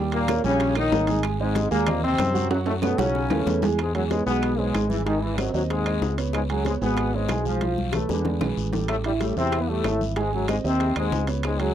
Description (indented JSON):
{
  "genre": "latin, salsa",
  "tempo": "188 BPM",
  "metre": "4/4",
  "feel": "straight",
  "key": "E major",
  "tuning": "A4 = 440 Hz",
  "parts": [
    { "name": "warm grand piano", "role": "accompaniment", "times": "0.0-11.7 s", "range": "E3 to G#5", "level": "-28 LUFS", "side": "right 8 dB", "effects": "none" },
    { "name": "fingered electric bass", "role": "bass", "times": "0.0-11.7 s", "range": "G#1 to F#2", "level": "-27 LUFS", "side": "left 1 dB", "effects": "none" },
    { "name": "brilliant trombone section", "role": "melody", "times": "0.1-11.7 s", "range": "F#2 to F4", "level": "-25 LUFS", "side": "left 2 dB", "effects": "none" },
    { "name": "bongos", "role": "percussion", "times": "0.1-11.6 s", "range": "none", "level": "-33 LUFS", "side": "left 10 dB", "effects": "none" },
    { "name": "congas", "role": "percussion", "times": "0.1-11.7 s", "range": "none", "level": "-32 LUFS", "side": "left 3 dB", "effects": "none" },
    { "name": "timbales", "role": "percussion", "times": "0.1-11.7 s", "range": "none", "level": "-32 LUFS", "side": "right 6 dB", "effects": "none" },
    { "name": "claves", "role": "percussion", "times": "0.3-11.6 s", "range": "none", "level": "-40 LUFS", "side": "right 16 dB", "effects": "none" },
    { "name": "guiro", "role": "percussion", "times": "0.3-11.7 s", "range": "none", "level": "-42 LUFS", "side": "left 19 dB", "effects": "none" }
  ],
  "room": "light reverb",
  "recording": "dry, close 1970s-style studio recording",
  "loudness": "-21 LUFS",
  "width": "side -10 dB against mid",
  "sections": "0.0-3.8 A section; 3.8-11.7 B section",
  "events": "drum fill 2.5-3.8, 7.6-8.9",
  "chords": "0.0 D#7; 1.2 G#add9; 2.5 F#m; 3.1 B9; 3.8 E6; 5.1 G#7; 6.3 C#7sus4; 7.6 Bm7b5; 8.3 E7; 8.9 Am7; 10.2 G#7",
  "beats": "0.29 0.61 0.92 | 1.24 1.56 1.88 2.20 | 2.51 2.83 3.15 3.47 | 3.79 4.11 4.43 4.75 | 5.06 5.38 5.70 6.02 | 6.34 6.66 6.98 7.30 | 7.62 7.94 8.26 8.57 | 8.89 9.21 9.53 9.85 | 10.17 10.48 10.80 11.12 | 11.44"
}